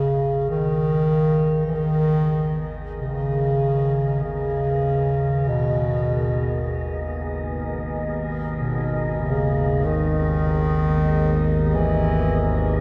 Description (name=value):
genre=dark ambient drone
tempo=48 BPM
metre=4/4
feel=straight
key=G# minor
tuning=A4 = 437 Hz
part: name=mellow bass clarinet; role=melody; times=0.0-12.8 s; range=B2 to E3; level=-23 LUFS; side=equal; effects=shimmer reverb, tape echo
part: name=deep dark ambient pad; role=sustained chords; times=0.5-12.8 s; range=B3 to D#5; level=-35 LUFS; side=equal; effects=chorus, built-in reverb, shimmer reverb
part: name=analog drone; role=drone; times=0.0-12.8 s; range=G#1 to D#2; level=-29 LUFS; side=equal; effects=chorus
part: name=wind-like tuned noise texture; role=texture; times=0.0-12.8 s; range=D#5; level=-38 LUFS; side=equal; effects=built-in reverb, shimmer reverb
room=wet cathedral reverb, RT60 7.0 s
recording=dark, warm production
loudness=-22 LUFS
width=mono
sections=0.0-12.8 A section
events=fade-in on synth drone 0.0-12.8; fade-in on ambient pad 0.0-12.8; fade-in on synth texture 0.0-12.8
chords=0.0 G#madd9